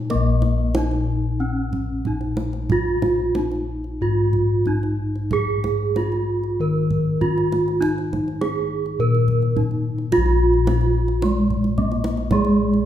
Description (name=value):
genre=Javanese gamelan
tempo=92-109 BPM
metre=4/4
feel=straight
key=Bb slendro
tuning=A4 = 443 Hz
part: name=gamelan-type bronze metallophone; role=melody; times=0.0-12.9 s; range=Ab3-25c to Bb4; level=-22 LUFS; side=right 2 dB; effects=none
part: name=gamelan-type bossed gongs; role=bass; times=0.0-12.9 s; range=Bb1 to Bb4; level=-22 LUFS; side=left 2 dB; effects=none
part: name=kendang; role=percussion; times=0.1-12.8 s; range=none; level=-28 LUFS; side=right 2 dB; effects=none
room=wet recital hall reverb, RT60 1.5 s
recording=recorded in a church or concert hall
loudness=-18 LUFS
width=side -11 dB against mid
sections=0.1-10.1 A section; 10.1-12.9 B section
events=none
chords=none